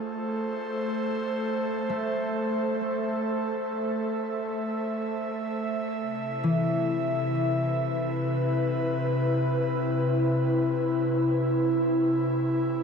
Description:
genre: ambient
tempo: free time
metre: none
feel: none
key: C major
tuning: A4 = 440 Hz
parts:
  - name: airy breathy pad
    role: sustained chords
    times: 0.0-12.8 s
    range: C3 to E5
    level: -25 LUFS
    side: equal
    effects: chorus, shimmer reverb
  - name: concert harp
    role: arpeggios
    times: 1.9-10.3 s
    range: E3 to A3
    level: -32 LUFS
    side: left 3 dB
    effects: ping-pong delay, shimmer reverb
room: wet huge ambient reverb, RT60 9.6 s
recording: dark, warm production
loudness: -25 LUFS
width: side -6 dB against mid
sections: 0.0-6.0 A section; 6.0-12.8 B section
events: none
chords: 0.0 Am; 6.0 Cmaj7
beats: free time

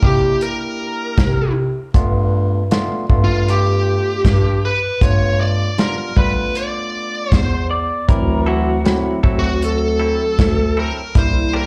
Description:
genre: straight-eighth soul blues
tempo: 78 BPM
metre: 4/4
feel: straight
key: unclear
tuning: A4 = 440 Hz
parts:
  - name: smooth overdriven lead guitar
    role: melody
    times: 0.0-11.7 s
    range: F4 to D5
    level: -23 LUFS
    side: equal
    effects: slapback echo
  - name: barky tine electric piano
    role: accompaniment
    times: 0.0-11.7 s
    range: E3 to G4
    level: -26 LUFS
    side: equal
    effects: slapback echo
  - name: breathy bass clarinet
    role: bass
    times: 0.0-11.7 s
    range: C2 to G3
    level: -20 LUFS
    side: equal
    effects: none
  - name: warm soul drum kit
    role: drums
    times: 0.0-11.3 s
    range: hi-hat, kick drum, snare drum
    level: -17 LUFS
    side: equal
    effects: none
  - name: electric guitar through a small old amp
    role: second line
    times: 7.7-9.2 s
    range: F#4 to D5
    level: -25 LUFS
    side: equal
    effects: slapback echo, tape echo
  - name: direct-recorded clean electric guitar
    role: stabs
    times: 8.5-11.7 s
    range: E3 to A4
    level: -31 LUFS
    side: equal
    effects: slapback echo, tape echo
room: little or no reverb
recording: live gig heard through the venue's PA, club reverb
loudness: -17 LUFS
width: mono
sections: 0.0-11.7 A section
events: none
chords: 0.0 C9; 1.9 G9; 8.1 D9; 11.2 C9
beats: 0.41 1.18 | 1.94 2.71 3.48 4.25 | 5.01 5.78 6.55 7.32 | 8.08 8.85 9.62 10.38 | 11.15

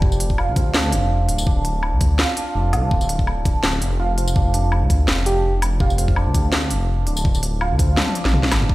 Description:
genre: half-time drum and bass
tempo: 166 BPM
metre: 4/4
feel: swing 54% on 16ths, half-time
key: D minor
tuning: A4 = 439 Hz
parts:
  - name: santur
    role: arpeggios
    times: 0.0-8.7 s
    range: C4 to D5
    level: -26 LUFS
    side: right 2 dB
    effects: dub echo
  - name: dark detuned saw bass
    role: bass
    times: 0.0-8.7 s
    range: D1 to D2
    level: -20 LUFS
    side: equal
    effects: none
  - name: electronic kick drum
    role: drums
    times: 0.0-8.7 s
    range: none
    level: -19 LUFS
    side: equal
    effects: none
  - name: drum and bass drum kit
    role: drums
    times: 0.1-8.7 s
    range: hi-hat, snare drum, tambourine, toms, woodblock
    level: -23 LUFS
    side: left 1 dB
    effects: none
  - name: soft struck synth lead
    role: melody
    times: 5.3-5.5 s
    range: G4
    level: -27 LUFS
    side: right 2 dB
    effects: chorus, cassette tape, digital delay
room: light reverb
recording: played on a big sound system in a bare room, stone room reverb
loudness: -17 LUFS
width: side -18 dB against mid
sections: 0.0-8.7 A section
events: drum fill 8.0-8.7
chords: 0.0 D5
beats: | 0.02 0.38 0.74 1.10 | 1.47 1.83 2.19 2.55 | 2.91 3.27 3.63 4.00 | 4.36 4.72 5.08 5.44 | 5.80 6.16 6.53 6.89 | 7.25 7.61 7.97 8.33 | 8.69

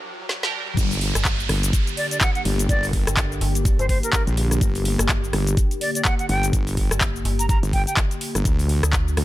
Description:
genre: bass house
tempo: 125 BPM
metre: 4/4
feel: swing 58% on 16ths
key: G harmonic minor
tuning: A4 = 438 Hz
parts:
  - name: riser and downlifter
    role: sound effects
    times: 0.0-4.6 s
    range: none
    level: -31 LUFS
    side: equal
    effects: none
  - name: garage drum kit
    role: drums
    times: 0.3-9.2 s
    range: handclaps, hi-hat, rim click, shaker, snare drum, toms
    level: -25 LUFS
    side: left 1 dB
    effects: none
  - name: band-passed chord stab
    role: stabs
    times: 0.4-0.8 s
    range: D4 to Bb4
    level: -31 LUFS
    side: right 6 dB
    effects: phaser, lush chorus, sidechain pumping, tape echo
  - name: sweeping resonant pad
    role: sustained chords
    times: 0.8-9.2 s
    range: D3 to G4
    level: -31 LUFS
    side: left 1 dB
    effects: chorus, sidechain pumping
  - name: wobble bass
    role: bass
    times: 0.8-9.2 s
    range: G1 to D2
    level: -22 LUFS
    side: equal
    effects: chorus, tube saturation, sidechain pumping
  - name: electronic kick drum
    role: drums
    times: 0.8-9.0 s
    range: none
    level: -22 LUFS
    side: equal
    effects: none
  - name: metallic FM bass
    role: bass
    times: 1.2-9.2 s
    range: G1 to D2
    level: -24 LUFS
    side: equal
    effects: tube saturation, sidechain pumping
  - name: reedy silver concert flute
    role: melody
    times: 2.0-7.9 s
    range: Bb4 to Bb5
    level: -28 LUFS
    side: right 1 dB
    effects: tape echo
room: little or no reverb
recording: high-pass filter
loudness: -19 LUFS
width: side -16 dB against mid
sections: 0.8-9.2 A section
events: break 0.0-0.8; riser 0.0-0.8; drum fill 0.3-0.8; drop 0.8-9.2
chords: 0.0 Gm; 8.5 D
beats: 0.29 | 0.77 1.25 1.73 2.21 | 2.69 3.17 3.65 4.13 | 4.61 5.09 5.57 6.05 | 6.53 7.01 7.49 7.97 | 8.45 8.93

